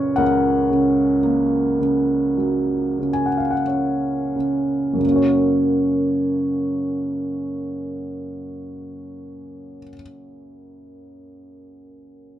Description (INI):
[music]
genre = classical, lyrical solo piano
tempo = 43-59 BPM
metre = 4/4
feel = rubato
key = F# major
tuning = A4 = 441 Hz
[part]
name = warm upright piano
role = solo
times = 0.0-12.4 s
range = C#2 to G#5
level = -19 LUFS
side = right 1 dB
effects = none
[sound]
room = wet studio reverb, RT60 0.7 s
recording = dark, warm production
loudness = -18 LUFS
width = side -12 dB against mid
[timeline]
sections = 0.0-5.0 A section; 5.0-10.4 B section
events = slowing down 0.0-5.0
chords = 0.0 F#